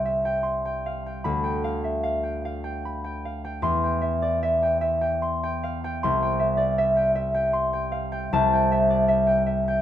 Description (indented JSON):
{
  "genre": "classical, solo harp piece",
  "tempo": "77 BPM",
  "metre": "3/4",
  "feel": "rubato",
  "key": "C major",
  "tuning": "A4 = 440 Hz",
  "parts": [
    { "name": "concert harp", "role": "solo", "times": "0.0-9.8 s", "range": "C2 to C6", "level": "-22 LUFS", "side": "equal", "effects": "none" }
  ],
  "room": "moderate stone room reverb, RT60 1.0 s",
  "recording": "none",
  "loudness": "-22 LUFS",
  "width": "side -11 dB against mid",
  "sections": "0.0-9.8 A section",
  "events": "none",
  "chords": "0.0 C; 1.2 G7/D; 3.6 C/E; 6.0 C; 8.3 Am7/C"
}